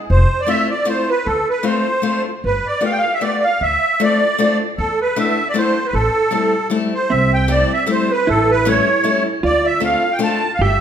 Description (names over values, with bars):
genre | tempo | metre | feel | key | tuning
musette waltz | 154 BPM | 3/4 | swing 55% on 8ths | A minor, C major from 7.1 s | A4 = 439 Hz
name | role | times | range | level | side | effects
musette accordion | melody | 0.1-10.8 s | A4 to A5 | -16 LUFS | right 1 dB | none
upright bass | bass | 0.1-10.8 s | F1 to E2 | -18 LUFS | equal | none
picked old ladder-braced acoustic guitar | accompaniment | 0.5-10.4 s | G3 to G4 | -21 LUFS | left 4 dB | none
hollow-body jazz guitar | second line | 7.1-10.8 s | C4 to G4 | -22 LUFS | right 4 dB | none
room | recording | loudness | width
wet recital hall reverb, RT60 1.3 s | minimal, uncompressed stereo recording | -14 LUFS | side -9 dB against mid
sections
0.0-7.1 A section; 7.1-10.8 B section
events
none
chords
0.1 Fmaj7; 1.3 Dm7; 2.4 G9; 3.6 Dm7; 4.8 E7sus4; 5.9 Am7; 7.1 C6; 8.3 A7; 9.4 Dm7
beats
| 0.10 0.49 0.88 | 1.26 1.66 2.05 | 2.45 2.84 3.23 | 3.62 4.01 4.40 | 4.78 5.16 5.55 | 5.93 6.32 6.72 | 7.11 7.50 7.89 | 8.28 8.67 9.06 | 9.44 9.82 10.21 | 10.59